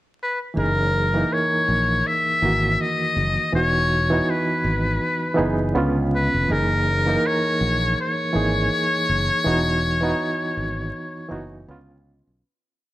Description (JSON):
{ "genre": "lo-fi hip hop", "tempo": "81 BPM", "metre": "4/4", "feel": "swing 59% on 16ths", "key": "unclear", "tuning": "A4 = 440 Hz", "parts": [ { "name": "trumpet with metal mute", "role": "melody", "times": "0.2-11.7 s", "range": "A#4 to E5", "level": "-22 LUFS", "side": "left 2 dB", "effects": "slapback echo" }, { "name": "barky reed electric piano", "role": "accompaniment", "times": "0.5-12.4 s", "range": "D3 to A#4", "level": "-24 LUFS", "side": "right 2 dB", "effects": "overdrive, fast tremolo, cassette tape" }, { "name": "fretless electric bass", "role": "bass", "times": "0.6-12.4 s", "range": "E1 to C#2", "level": "-24 LUFS", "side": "equal", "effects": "none" } ], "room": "light reverb, small room reverb", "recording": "vinyl crackle", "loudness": "-19 LUFS", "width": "side -15 dB against mid", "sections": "0.0-0.6 pickup bar; 0.6-12.4 A section", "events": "fade-out 9.5-12.4", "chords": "0.0 N.C.; 0.6 F#13; 3.5 C#m11/E; 5.8 C#7b9; 6.5 F#13; 9.5 C#m11/E; 11.7 C#7b9" }